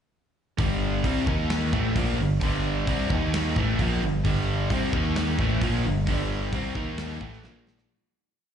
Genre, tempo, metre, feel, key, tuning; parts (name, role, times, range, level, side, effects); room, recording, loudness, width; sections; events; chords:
hard rock; 132 BPM; 4/4; straight; G minor; A4 = 442 Hz
cranked stack guitar; riff; 0.6-7.9 s; G2 to Eb4; -31 LUFS; right 12 dB; overdrive, slapback echo
crunchy overdriven guitar; riff; 0.6-7.9 s; G2 to Eb4; -30 LUFS; left 9 dB
sludgy distorted guitar; riff; 0.6-7.9 s; G2 to Eb4; -32 LUFS; equal; overdrive
picked electric bass; bass; 0.6-7.9 s; G1 to Eb2; -28 LUFS; right 1 dB
big rock drum kit; drums; 0.6-7.9 s; hi-hat, kick drum, snare drum; -29 LUFS; equal
small room ambience; live gig heard through the venue's PA, club reverb, nothing above 10.8 kHz; -23 LUFS; side -8 dB against mid
0.6-7.9 riff
fade-out 6.1-7.9; drum fill 7.4-7.9
0.6 G5; 1.3 Eb5; 1.7 Gm; 3.1 Eb5; 3.6 Gm; 4.9 Eb5; 5.4 Gm; 6.8 Eb5; 7.2 A5; 7.4 Bb5